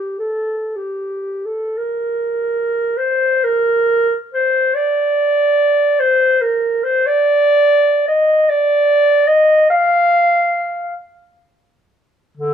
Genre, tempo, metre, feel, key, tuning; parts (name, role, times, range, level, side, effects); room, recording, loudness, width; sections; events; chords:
classical, free, expressive piece for unaccompanied clarinet; 27-50 BPM (dotted quarters); 6/8; rubato; A4 = 438 Hz
dark clarinet; solo; 0.0-12.5 s; D3 to F5; -13 LUFS; equal
light reverb; minimal, uncompressed stereo recording; -13 LUFS; side -8 dB against mid
0.0-2.0 A section; 2.0-12.5 B section